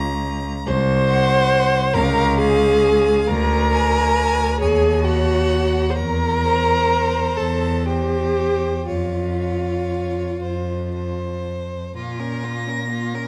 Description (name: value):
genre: classical, slow romantic movement for string quartet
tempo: 38-48 BPM (dotted quarters)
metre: 6/8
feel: rubato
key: Bb minor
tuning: A4 = 445 Hz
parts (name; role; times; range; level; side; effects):
- clear violin; second line; 0.0-13.3 s; F4 to Bb5; -30 LUFS; equal; none
- rich cello; bass; 0.0-13.2 s; C2 to Bb2; -24 LUFS; equal; none
- rich violin; melody; 0.7-13.3 s; F5 to Bb6; -31 LUFS; equal; none
- dark viola; accompaniment; 0.7-13.3 s; Bb3 to C5; -22 LUFS; equal; none
room: moderate recital hall reverb, RT60 1.5 s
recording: dark, warm production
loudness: -19 LUFS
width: mono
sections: 0.0-12.0 A section; 12.0-13.3 B section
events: none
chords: 0.0 Bbm/Db; 0.7 N.C.; 1.9 Db; 3.3 Bb7/D; 4.6 Ebm7; 6.0 C7/E; 8.9 Db/F; 12.0 Bbm